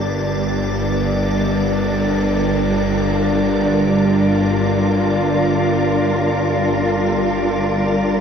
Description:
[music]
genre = dark ambient drone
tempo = free time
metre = none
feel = none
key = unclear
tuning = A4 = 440 Hz
[part]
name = warm chamber cello section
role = sustained chords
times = 0.0-8.2 s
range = G3 to Bb4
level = -19 LUFS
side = equal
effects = none
[part]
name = bowed-like drone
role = drone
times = 0.0-8.2 s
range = G1 to G2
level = -18 LUFS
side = equal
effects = built-in reverb
[part]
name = icy glass pad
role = texture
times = 0.0-8.2 s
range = D5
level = -26 LUFS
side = left 1 dB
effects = chorus, built-in reverb
[sound]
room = wet cathedral reverb, RT60 5.0 s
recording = dark, warm production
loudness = -15 LUFS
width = side -7 dB against mid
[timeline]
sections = 0.0-8.2 A section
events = fade-in on cello section 0.0-8.2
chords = 0.0 Gm

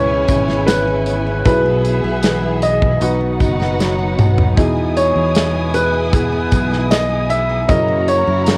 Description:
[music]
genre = pop ballad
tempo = 77 BPM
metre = 4/4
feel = straight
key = E major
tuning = A4 = 440 Hz
[part]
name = clear baby grand piano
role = melody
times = 0.0-8.6 s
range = B4 to E5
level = -20 LUFS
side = equal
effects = none
[part]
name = warm studio violin section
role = second line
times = 0.0-8.6 s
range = B3 to D#6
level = -28 LUFS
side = equal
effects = cassette tape, analog delay
[part]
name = clear concert grand piano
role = accompaniment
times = 0.0-8.6 s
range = G#2 to B4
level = -25 LUFS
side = equal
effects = cassette tape
[part]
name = dark symphonic string section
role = sustained chords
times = 0.0-8.6 s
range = B2 to G#4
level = -30 LUFS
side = equal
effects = none
[part]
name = picked steel-string acoustic guitar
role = arpeggios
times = 0.0-8.6 s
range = F#2 to A#4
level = -27 LUFS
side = equal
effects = none
[part]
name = fingered electric bass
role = bass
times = 0.0-8.6 s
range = F#1 to F#2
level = -23 LUFS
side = equal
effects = none
[part]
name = modern studio drum kit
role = drums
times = 0.3-8.6 s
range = hi-hat, kick drum, snare drum, toms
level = -20 LUFS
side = equal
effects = cassette tape
[part]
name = tambourine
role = percussion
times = 0.3-8.6 s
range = none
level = -38 LUFS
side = equal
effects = none
[sound]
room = light reverb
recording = home recording on cassette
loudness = -16 LUFS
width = mono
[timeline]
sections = 0.0-8.6 A section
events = drum fill 3.8-4.6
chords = 0.0 C#m7; 1.5 E/B; 3.0 B; 4.6 Emaj7; 7.7 F#7

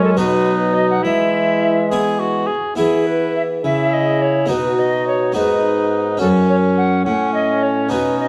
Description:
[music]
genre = classical, renaissance-style consort dance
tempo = 70 BPM (dotted quarters)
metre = 6/8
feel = straight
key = E major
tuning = A4 = 441 Hz
[part]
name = mellow alto recorder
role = melody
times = 0.0-8.3 s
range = G#4 to F#5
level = -23 LUFS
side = equal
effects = none
[part]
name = warm cor anglais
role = second line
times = 0.0-8.3 s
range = C#4 to G#4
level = -24 LUFS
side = equal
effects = none
[part]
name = brilliant trombone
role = accompaniment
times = 0.0-8.3 s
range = F#3 to G#4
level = -24 LUFS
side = equal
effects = none
[part]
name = harpsichord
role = accompaniment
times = 0.0-8.3 s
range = F#2 to G#4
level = -24 LUFS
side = equal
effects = none
[part]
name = mellow bassoon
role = bass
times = 0.0-8.3 s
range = F#2 to E3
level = -24 LUFS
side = equal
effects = none
[sound]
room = moderate recital hall reverb, RT60 1.4 s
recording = dark, warm production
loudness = -17 LUFS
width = mono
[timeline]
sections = 0.0-2.8 A section; 2.8-8.3 B section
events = none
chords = 0.2 B; 1.0 E; 4.5 B; 6.2 F#m

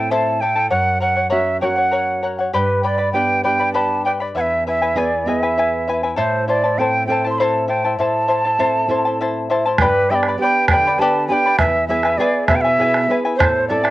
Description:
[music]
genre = andean folk, Andean ensemble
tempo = 66 BPM (dotted quarters)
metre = 6/8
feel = straight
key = A dorian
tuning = A4 = 440 Hz
[part]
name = mellow quena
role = melody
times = 0.0-13.9 s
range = B4 to C6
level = -18 LUFS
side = right 2 dB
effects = cassette tape
[part]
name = charango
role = accompaniment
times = 0.0-13.9 s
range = E4 to B5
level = -20 LUFS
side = left 3 dB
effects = cassette tape
[part]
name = nylon-string guitar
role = accompaniment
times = 0.0-13.9 s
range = E2 to A4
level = -24 LUFS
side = right 2 dB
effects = cassette tape
[part]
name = bombo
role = percussion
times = 9.8-13.9 s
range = none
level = -18 LUFS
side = right 2 dB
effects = none
[sound]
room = light reverb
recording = home recording on cassette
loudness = -15 LUFS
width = side -16 dB against mid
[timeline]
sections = 0.0-9.8 A section; 9.8-13.9 A section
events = none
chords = 0.0 Am; 0.7 F#; 2.5 G; 4.4 E; 6.2 Am; 9.8 G; 11.6 E; 13.4 Am

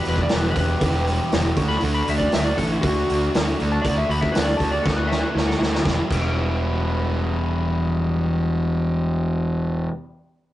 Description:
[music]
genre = garage rock duo or trio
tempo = 119 BPM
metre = 4/4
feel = straight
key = E minor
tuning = A4 = 439 Hz
[part]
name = electric slide guitar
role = melody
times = 0.0-5.8 s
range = E4 to B5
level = -25 LUFS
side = equal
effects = none
[part]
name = crunchy overdriven guitar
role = riff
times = 0.0-9.9 s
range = E2 to G4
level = -24 LUFS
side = equal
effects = spring reverb
[part]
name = vintage drum kit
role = drums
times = 0.0-6.3 s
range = crash cymbal, hi-hat, kick drum, snare drum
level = -24 LUFS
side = equal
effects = none
[part]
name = fuzz fingered electric bass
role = bass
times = 0.1-9.9 s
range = E1 to D2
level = -24 LUFS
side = equal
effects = overdrive
[sound]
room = moderate studio reverb, RT60 0.6 s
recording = rough rehearsal-room recording, tube saturation, nothing above 10.5 kHz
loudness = -19 LUFS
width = side -14 dB against mid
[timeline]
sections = 0.0-5.8 A section; 5.8-9.9 B section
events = electric slide guitar solo 0.0-5.8; drum fill 4.8-5.8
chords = 0.0 Em; 1.6 D; 5.8 Em

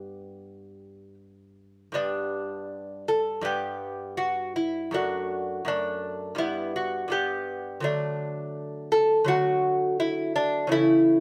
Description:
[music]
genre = classical, baroque-style dance for lute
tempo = 82 BPM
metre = 4/4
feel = uneven beats, rubato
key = G major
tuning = A4 = 440 Hz
[part]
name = lute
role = solo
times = 0.0-11.2 s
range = F#2 to A4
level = -27 LUFS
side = equal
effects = none
[sound]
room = light reverb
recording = band playing live in one room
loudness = -27 LUFS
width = mono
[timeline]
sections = 0.0-2.0 A section; 2.0-11.2 B section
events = none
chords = 0.0 G; 4.9 D/F#; 6.4 G; 7.9 D

